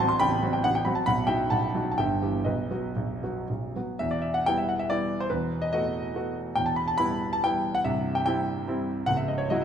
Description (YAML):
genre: classical, romantic triple-time dance for piano with dotted rhythms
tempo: 110-154 BPM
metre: 3/4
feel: rubato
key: E minor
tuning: A4 = 440 Hz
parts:
  - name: clear concert grand piano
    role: solo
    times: 0.0-9.6 s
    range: A0 to C6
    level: -24 LUFS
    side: equal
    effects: none
room: wet recital hall reverb, RT60 1.5 s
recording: minimal, uncompressed stereo recording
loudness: -24 LUFS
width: side -8 dB against mid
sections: 0.0-4.0 A section; 4.0-9.6 B section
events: none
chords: 0.0 F#dim/A; 1.1 B; 2.0 Em/G; 2.4 B; 4.0 Em; 5.3 B7/E; 6.6 Em; 7.8 C; 9.1 F#5/C#